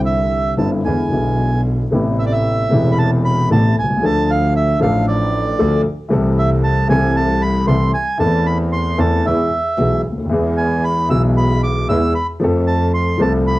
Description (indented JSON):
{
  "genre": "tango",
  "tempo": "114 BPM",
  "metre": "4/4",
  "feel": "rubato",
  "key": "A harmonic minor",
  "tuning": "A4 = 441 Hz",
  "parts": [
    { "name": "dark concert grand piano", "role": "accompaniment", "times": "0.0-13.6 s", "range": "E1 to A4", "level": "-16 LUFS", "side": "left 1 dB", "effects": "plate reverb" },
    { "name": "clear double bass", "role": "bass", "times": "0.0-13.6 s", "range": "E1 to F2", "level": "-20 LUFS", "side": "right 1 dB", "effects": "none" },
    { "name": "bandoneon", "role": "melody", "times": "0.1-13.6 s", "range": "D5 to E6", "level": "-20 LUFS", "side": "right 2 dB", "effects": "cassette tape, plate reverb" }
  ],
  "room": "light reverb",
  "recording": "home recording on cassette",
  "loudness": "-14 LUFS",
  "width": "side -17 dB against mid",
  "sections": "0.0-1.9 A section; 1.9-13.6 B section",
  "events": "none",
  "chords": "0.0 Cadd9; 0.8 E7; 1.9 Amadd9; 4.0 Dm; 6.1 Am/C; 8.2 Am/E; 9.2 E; 12.4 F"
}